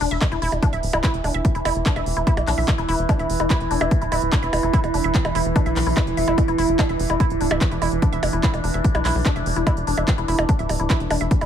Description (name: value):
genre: psychedelic trance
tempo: 146 BPM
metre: 4/4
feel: straight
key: unclear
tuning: A4 = 440 Hz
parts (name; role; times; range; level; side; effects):
- overtone-sweeping drone; sustained chords; 0.0-11.5 s; E3 to E4; -27 LUFS; right 2 dB; chorus, built-in reverb, sidechain pumping
- woody wave-folded pluck; riff; 0.0-11.4 s; D4 to E5; -26 LUFS; moving between left 5 dB and right 6 dB; chorus, auto-pan, sidechain pumping, dub echo
- tight sequencer bass; bass; 0.0-11.5 s; D1 to B1; -25 LUFS; equal; none
- techno drum kit; drums; 0.0-11.5 s; handclaps, hi-hat, percussion blips; -27 LUFS; right 1 dB; none
- deep dark ambient pad; texture; 2.1-11.5 s; E4 to E5; -28 LUFS; right 5 dB; chorus, built-in reverb, sidechain pumping
- electronic kick drum; drums; 0.2-11.4 s; none; -19 LUFS; equal; none
room: light reverb, digital ambience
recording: none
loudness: -18 LUFS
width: side -9 dB against mid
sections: 0.0-11.5 A section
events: none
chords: 0.0 E5